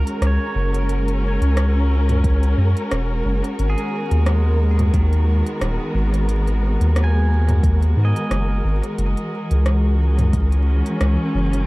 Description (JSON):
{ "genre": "ambient dub", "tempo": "89 BPM", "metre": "4/4", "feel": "swing 56% on 16ths", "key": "G# minor", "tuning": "A4 = 440 Hz", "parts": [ { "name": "dark chamber string section", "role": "sustained chords", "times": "0.0-11.7 s", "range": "D#3 to A#4", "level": "-24 LUFS", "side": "left 1 dB", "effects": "none" }, { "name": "pedal steel guitar", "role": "arpeggios", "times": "0.0-11.1 s", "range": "D#3 to G#5", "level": "-32 LUFS", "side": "right 3 dB", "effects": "tape echo" }, { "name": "soft dub sub bass", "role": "bass", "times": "0.0-11.7 s", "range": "D#1 to G#2", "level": "-17 LUFS", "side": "equal", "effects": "none" }, { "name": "bubbling stepped-filter texture", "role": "texture", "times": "0.0-11.7 s", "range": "A#4", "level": "-34 LUFS", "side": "right 3 dB", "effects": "chorus, built-in reverb" }, { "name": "organic electronic drum kit", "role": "drums", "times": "0.1-11.7 s", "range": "hi-hat, rim click, toms", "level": "-28 LUFS", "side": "equal", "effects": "overdrive, dub echo" }, { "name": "electronic kick drum", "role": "drums", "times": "2.2-10.5 s", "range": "none", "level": "-22 LUFS", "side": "equal", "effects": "none" } ], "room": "little or no reverb", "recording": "dark, warm production, vinyl crackle", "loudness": "-16 LUFS", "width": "side -21 dB against mid", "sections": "0.0-11.7 A section", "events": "none", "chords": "0.0 F#add9; 3.6 G#m9; 9.0 F#9", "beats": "0.22 | 0.89 1.57 2.24 2.92 | 3.59 4.26 4.94 5.61 | 6.29 6.96 7.63 8.31 | 8.98 9.66 10.33 11.01" }